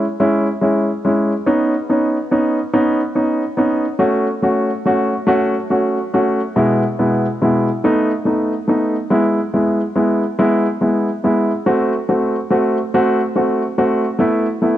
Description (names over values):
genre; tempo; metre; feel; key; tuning
pop; 47 BPM (dotted quarters); 6/8; straight; E major; A4 = 440 Hz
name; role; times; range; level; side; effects
clear baby grand piano; solo; 0.0-14.8 s; B2 to F#4; -14 LUFS; equal; none
room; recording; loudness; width
light reverb, studio reverb; home recording on cassette; -14 LUFS; side -12 dB against mid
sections
0.0-14.8 A section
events
none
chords
0.0 E6; 1.5 Badd9; 4.0 F#m; 6.6 E/B; 7.8 B7; 9.1 E; 11.7 Am6; 14.2 B7sus4